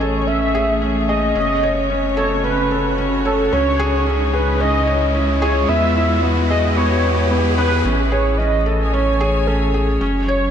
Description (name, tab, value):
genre	piano and strings electronica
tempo	111 BPM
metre	4/4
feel	straight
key	unclear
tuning	A4 = 439 Hz
part	warm velvety synth lead	melody	0.0-10.5 s	A4 to E5	-20 LUFS	equal	chorus
part	clear studio string section	sustained chords	0.0-10.5 s	C#3 to G#5	-25 LUFS	equal	low-pass filter
part	felt-muted upright piano	riff	0.0-10.5 s	B3 to C#5	-21 LUFS	equal	digital delay
part	warm sub bass	bass	0.0-10.5 s	F#1 to E2	-21 LUFS	equal	none
part	riser	sound effects	0.0-7.8 s	none	-27 LUFS	equal	none
room	moderate huge ambient reverb, RT60 4.8 s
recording	dark, warm production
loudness	-15 LUFS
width	side -8 dB against mid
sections	0.0-7.8 A section; 7.8-10.5 B section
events	build-up 0.0-7.8; riser 0.0-7.8; drop 7.8-10.5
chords	0.0 Amaj7; 1.4 F#m; 3.5 C#m; 5.7 E; 7.8 Amaj7